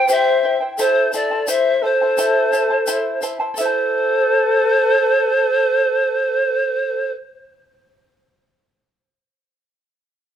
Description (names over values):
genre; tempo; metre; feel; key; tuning
andean folk, Andean ensemble; 86 BPM; 4/4; straight; A minor; A4 = 440 Hz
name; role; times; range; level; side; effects
breathy polished pan flute; melody; 0.0-7.1 s; C5 to E5; -17 LUFS; right 2 dB; plate reverb
breathy mellow large quena; second line; 0.0-7.1 s; A4 to C5; -21 LUFS; left 5 dB; none
charango; accompaniment; 0.0-7.9 s; E4 to A5; -23 LUFS; equal; none
tube shaker; percussion; 0.1-3.9 s; none; -28 LUFS; left 5 dB; none
room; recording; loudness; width
wet small room ambience, RT60 0.5 s; heard from further back in the room; -15 LUFS; side -9 dB against mid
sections
0.0-3.6 A section; 3.6-6.4 B section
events
none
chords
0.0 C; 0.8 Am